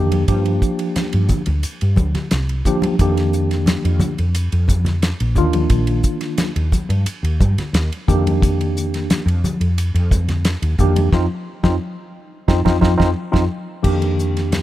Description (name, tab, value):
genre	electric jazz fusion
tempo	88 BPM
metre	4/4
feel	straight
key	unclear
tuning	A4 = 440 Hz
part	tine electric piano	accompaniment	0.0-14.6 s	Eb3 to G4	-20 LUFS	equal	fast stereo tremolo
part	woody fretless electric bass	bass	0.0-14.6 s	Bb1 to G2	-18 LUFS	equal	ensemble chorus
part	damped 70s drum kit	drums	0.1-14.6 s	crash cymbal, hi-hat, kick drum, ride cymbal, snare drum	-20 LUFS	equal	none
part	congas	percussion	0.1-14.6 s	none	-24 LUFS	left 2 dB	none
room	little or no reverb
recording	none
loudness	-15 LUFS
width	side -14 dB against mid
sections	0.0-13.8 A section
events	drum fill 11.1-13.8; band accent 11.1-13.8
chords	0.3 Gm7; 3.0 Bbadd11; 8.1 F13sus4; 11.1 F5; 13.8 F13sus4